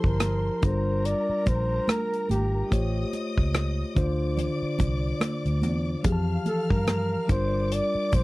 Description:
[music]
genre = lush 1970s-style soul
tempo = 72 BPM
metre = 4/4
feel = swing 58% on 16ths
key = unclear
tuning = A4 = 440 Hz
[part]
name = breathy flugelhorn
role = melody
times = 0.0-8.2 s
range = G4 to D5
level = -28 LUFS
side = equal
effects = none
[part]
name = dark studio string section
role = second line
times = 0.0-8.2 s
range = Bb4 to F6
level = -38 LUFS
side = left 1 dB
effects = none
[part]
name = mellow tine electric piano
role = accompaniment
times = 0.0-8.2 s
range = D3 to A5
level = -30 LUFS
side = left 2 dB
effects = none
[part]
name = vintage muted fingered electric bass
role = bass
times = 0.0-8.2 s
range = G1 to G2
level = -27 LUFS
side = equal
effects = none
[part]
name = modern studio drum kit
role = drums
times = 0.0-8.2 s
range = hi-hat, kick drum, rim click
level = -26 LUFS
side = equal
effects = none
[part]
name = congas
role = percussion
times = 0.2-8.2 s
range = none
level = -33 LUFS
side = right 3 dB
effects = none
[sound]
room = little or no reverb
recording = dry, close 1970s-style studio recording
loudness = -23 LUFS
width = side -20 dB against mid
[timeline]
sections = 0.0-8.2 A section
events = none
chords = 0.0 Fmaj9; 0.6 Gm7; 2.7 A7alt; 4.0 Dm7; 6.0 Fmaj9; 7.3 Gm7

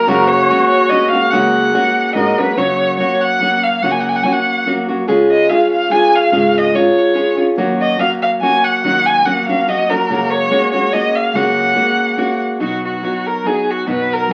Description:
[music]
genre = mexican folk, mariachi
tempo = 144 BPM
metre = 3/4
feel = swing 54% on 8ths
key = F# major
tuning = A4 = 439 Hz
[part]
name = rich violin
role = melody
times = 0.0-14.3 s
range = F#4 to G#5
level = -18 LUFS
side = equal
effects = none
[part]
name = dark trumpet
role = second line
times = 0.0-2.6 s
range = F#4 to A#4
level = -18 LUFS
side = equal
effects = none
[part]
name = nylon-string guitar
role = accompaniment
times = 0.0-14.3 s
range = F#2 to G#4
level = -18 LUFS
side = equal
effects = none
[part]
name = upright bass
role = bass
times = 0.1-14.3 s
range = G#1 to G#2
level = -32 LUFS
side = equal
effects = none
[sound]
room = wet small room reverb, RT60 0.5 s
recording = very old 78 rpm record, vinyl crackle, nothing above 10.8 kHz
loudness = -15 LUFS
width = mono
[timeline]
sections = 0.0-2.6 A section; 2.6-12.6 A section; 12.6-14.3 B section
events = none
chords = 0.1 F#add9; 2.6 F#; 5.1 C#; 7.6 F#6; 10.1 F#add9; 12.6 B

